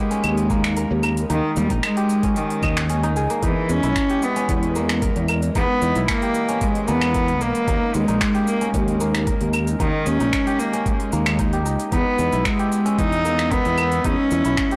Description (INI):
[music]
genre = organic downtempo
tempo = 113 BPM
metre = 4/4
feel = straight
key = unclear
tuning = A4 = 439 Hz
[part]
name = rich cello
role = melody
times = 0.0-14.8 s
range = Eb3 to D#4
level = -24 LUFS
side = equal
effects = shimmer reverb
[part]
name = warbly tape-like pad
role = sustained chords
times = 0.0-14.8 s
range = E3 to E6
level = -33 LUFS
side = equal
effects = none
[part]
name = kora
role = arpeggios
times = 0.0-14.8 s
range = Bb3 to Eb5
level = -30 LUFS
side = equal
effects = digital delay, shimmer reverb
[part]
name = organic electronic drum kit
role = drums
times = 0.1-14.8 s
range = claves, finger snaps, hi-hat, shaker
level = -30 LUFS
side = equal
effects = overdrive, soft clipping on snare
[part]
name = fretless electric bass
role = bass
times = 0.2-14.5 s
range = Bb1 to E2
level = -25 LUFS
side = equal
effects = tube saturation, ensemble chorus, sidechain pumping
[part]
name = electronic kick drum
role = drums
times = 0.5-14.7 s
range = none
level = -28 LUFS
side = equal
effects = overdrive
[sound]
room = light reverb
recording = blown-out, overdriven recording, overdrive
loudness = -20 LUFS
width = mono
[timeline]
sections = 0.0-3.4 A section; 3.4-14.8 B section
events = none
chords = 0.0 Eb7sus4; 3.4 Emaj7; 7.7 Eb7sus4; 11.9 Emaj7